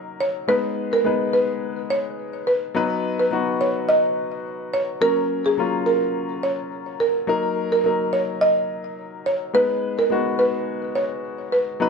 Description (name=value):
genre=dancehall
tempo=106 BPM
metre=4/4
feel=swing 56% on 16ths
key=unclear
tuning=A4 = 441 Hz
part: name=warm grand piano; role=accompaniment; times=0.0-11.9 s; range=Gb3 to Cb5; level=-25 LUFS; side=left 4 dB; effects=none
part: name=buzzing marimba with medium mallets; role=melody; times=0.2-11.6 s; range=Ab4 to D#5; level=-21 LUFS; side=right 2 dB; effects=ping-pong delay
room=light reverb, small room ambience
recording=none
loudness=-20 LUFS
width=side -5 dB against mid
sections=0.0-11.9 A section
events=none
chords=0.5 Abm; 2.8 B; 5.0 Gb; 7.3 Ebm; 9.5 Abm